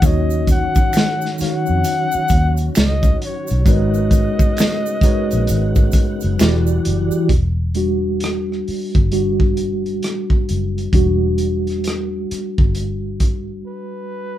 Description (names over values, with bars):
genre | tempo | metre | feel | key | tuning
R&B, neo-soul | 66 BPM | 4/4 | swing 63% on 16ths | unclear | A4 = 441 Hz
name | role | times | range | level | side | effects
mellow flugelhorn | melody | 0.0-6.4, 13.7-14.4 s | B4 to Gb5 | -23 LUFS | left 2 dB | none
mellow tine electric piano | accompaniment | 0.0-14.4 s | Eb3 to D5 | -21 LUFS | equal | medium stereo tremolo
tonewheel organ | sustained chords | 0.0-7.3 s | Db3 to Gb5 | -30 LUFS | right 1 dB | slow rotary speaker, chorus vibrato
vintage muted fingered electric bass | bass | 0.0-13.6 s | E1 to F2 | -20 LUFS | equal | none
crunchy breakbeat drum kit | drums | 0.0-13.5 s | hi-hat, kick drum, rim click, snare drum | -17 LUFS | equal | none
tube shaker and finger snaps | percussion | 0.0-7.3 s | none | -32 LUFS | right 5 dB | none
room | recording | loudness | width
light reverb | band playing live in one room | -15 LUFS | side -12 dB against mid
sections
0.0-7.3 A section; 7.3-14.4 B section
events
tine electric piano solo 7.3-14.4; break 13.7-14.4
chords
0.0 Ebm7; 3.7 Abm11; 6.4 Em9